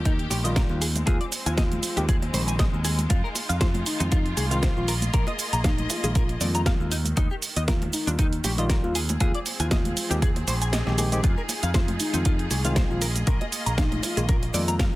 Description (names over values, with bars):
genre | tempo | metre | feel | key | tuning
nu-disco, nu disco | 118 BPM | 4/4 | swing 55% on 16ths | unclear | A4 = 440 Hz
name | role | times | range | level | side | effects
rich symphonic string section | sustained chords | 0.0-15.0 s | Eb3 to Eb5 | -35 LUFS | left 1 dB | sidechain pumping
picked electric bass | bass | 0.0-14.9 s | Bb1 to F2 | -27 LUFS | equal | none
cabasa, bongos and congas | percussion | 0.0-15.0 s | none | -36 LUFS | equal | none
soft octave-layered synth lead | melody | 0.1-14.4 s | Eb4 to F4 | -34 LUFS | left 1 dB | chorus, analog delay
direct-recorded clean electric guitar | riff | 0.1-14.8 s | D4 to Bb5 | -33 LUFS | left 2 dB | analog chorus, slapback echo
electronic kick drum | drums | 0.1-14.9 s | none | -23 LUFS | equal | none
house drum kit | drums | 0.1-14.9 s | hi-hat, shaker, snare drum | -29 LUFS | right 2 dB | none
tine electric piano | accompaniment | 0.4-15.0 s | Eb3 to G4 | -31 LUFS | equal | vintage 12-bit sampler grit, sidechain pumping, slapback echo
room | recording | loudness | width
digital ambience | dense, heavily limited modern master | -22 LUFS | side -17 dB against mid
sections
0.0-15.0 A section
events
kick drops out 10.7-11.2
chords
0.0 Ebadd9; 0.8 Ab/Eb; 3.1 Fm7; 4.9 Bb7sus4; 6.9 Ebadd9; 8.9 Abmaj7/Eb; 11.2 Fm7; 13.0 Bb7sus4